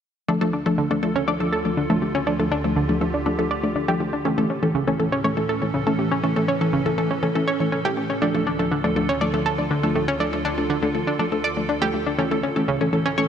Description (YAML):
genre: house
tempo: 121 BPM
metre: 4/4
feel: straight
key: D harmonic minor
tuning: A4 = 441 Hz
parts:
  - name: evolving wavetable pad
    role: sustained chords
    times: 0.6-13.3 s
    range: D2 to A4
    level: -28 LUFS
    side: right 2 dB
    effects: chorus, built-in reverb
  - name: analog pluck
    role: arpeggios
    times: 0.3-13.2 s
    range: C#3 to D5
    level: -24 LUFS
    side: right 1 dB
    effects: chorus, tape echo
  - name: wide unison pluck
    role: stabs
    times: 0.3-13.3 s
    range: E3 to D5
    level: -23 LUFS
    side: left 1 dB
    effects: tape echo
room: moderate lush hall reverb, RT60 2.9 s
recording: none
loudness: -20 LUFS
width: side -8 dB against mid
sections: 0.3-13.3 A section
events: filter sweep on synth arpeggio sound 0.3-13.3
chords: 0.3 Dm; 4.3 A; 8.2 Dm; 12.2 A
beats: | 0.28 0.78 1.28 1.77 | 2.27 2.76 3.26 3.76 | 4.25 4.75 5.24 5.74 | 6.24 6.73 7.23 7.72 | 8.22 8.71 9.21 9.71 | 10.20 10.70 11.19 11.69 | 12.19 12.68 13.18